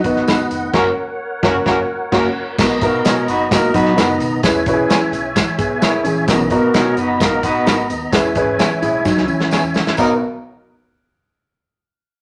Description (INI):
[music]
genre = uptempo 1960s-style soul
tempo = 130 BPM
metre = 4/4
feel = straight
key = B major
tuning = A4 = 440 Hz
[part]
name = warm horn section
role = second line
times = 0.0-10.1 s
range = F#3 to D#5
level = -22 LUFS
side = equal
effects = tube saturation
[part]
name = warm baby grand piano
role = accompaniment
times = 0.0-10.2 s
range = B1 to C#5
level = -21 LUFS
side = equal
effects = none
[part]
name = tonewheel organ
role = sustained chords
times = 0.0-10.2 s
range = B3 to A#5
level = -26 LUFS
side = equal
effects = slow rotary speaker, chorus vibrato
[part]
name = mellow electric guitar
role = riff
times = 0.0-9.9 s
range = D#3 to G#4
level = -22 LUFS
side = equal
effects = none
[part]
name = upright bass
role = bass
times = 0.0-10.2 s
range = E#1 to E3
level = -32 LUFS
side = equal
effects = none
[part]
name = warm soul drum kit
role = drums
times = 0.0-10.1 s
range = crash cymbal, hi-hat, kick drum, snare drum, splash cymbal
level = -21 LUFS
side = equal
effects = none
[part]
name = tambourine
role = percussion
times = 0.0-10.2 s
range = none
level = -38 LUFS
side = equal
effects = none
[part]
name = semi-hollow electric guitar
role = stabs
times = 0.3-10.1 s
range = B3 to D#5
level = -26 LUFS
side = equal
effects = none
[sound]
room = moderate large studio reverb, RT60 0.9 s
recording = none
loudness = -16 LUFS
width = mono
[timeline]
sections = 0.0-2.6 A section; 2.6-10.0 B section; 10.0-11.8 C section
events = band accent 0.7-2.6; drum fill 9.1-10.0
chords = 0.0 B; 0.7 F#; 2.6 Bmaj7; 4.4 E6; 6.3 Bmaj7; 8.1 E6; 10.0 Bmaj7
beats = 0.27 | 0.73 1.20 1.66 2.12 | 2.58 3.04 3.51 3.97 | 4.43 4.89 5.35 5.81 | 6.28 6.74 7.20 7.67 | 8.13 8.59 9.06 9.52 | 9.98